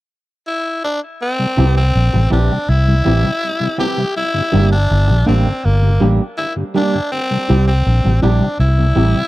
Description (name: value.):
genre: reggae.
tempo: 81 BPM.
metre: 4/4.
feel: straight.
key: unclear.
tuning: A4 = 439 Hz.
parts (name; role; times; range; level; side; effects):
breathy tenor saxophone; melody; 0.5-9.3 s; Bb3 to G4; -20 LUFS; left 1 dB; dub echo.
mellow tonewheel organ; accompaniment; 1.4-9.2 s; G2 to G4; -22 LUFS; left 2 dB; slow rotary speaker, dub echo.
electric guitar at the edge of break-up; accompaniment; 1.6-9.2 s; E3 to G4; -20 LUFS; right 4 dB; dub echo.
vintage muted fingered electric bass; bass; 1.6-9.1 s; G1 to C2; -13 LUFS; equal; none.
room: little or no reverb.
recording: dry, close 1970s-style studio recording.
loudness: -13 LUFS.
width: side -17 dB against mid.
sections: 0.0-1.2 A section; 1.2-9.3 B section.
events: none.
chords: 0.0 N.C.; 1.2 C; 4.2 Gm; 7.1 C.